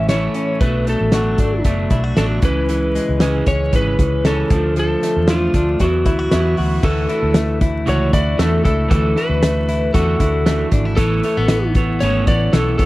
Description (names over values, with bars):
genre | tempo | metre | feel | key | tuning
jangly indie pop | 116 BPM | 4/4 | straight | unclear | A4 = 440 Hz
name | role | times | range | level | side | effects
lightly driven lead guitar | melody | 0.0-12.9 s | F4 to D5 | -21 LUFS | equal | none
electric guitar at the edge of break-up | accompaniment | 0.0-12.9 s | A2 to C#5 | -24 LUFS | right 4 dB | none
direct-recorded clean electric guitar | arpeggios | 0.0-12.9 s | E3 to G#4 | -23 LUFS | left 3 dB | spring reverb
vintage muted fingered electric bass | bass | 0.0-12.9 s | E1 to E2 | -19 LUFS | equal | none
loose indie drum kit | drums | 0.1-12.9 s | crash cymbal, hi-hat, kick drum, snare drum | -19 LUFS | equal | none
room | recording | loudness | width
studio reverb | vinyl crackle | -14 LUFS | side -18 dB against mid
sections
0.0-6.8 A section; 6.8-12.9 B section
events
none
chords
0.0 A; 0.6 Bm7; 2.4 C#m; 4.5 Dm; 5.8 Esus2; 6.8 Dadd9; 11.0 Aadd9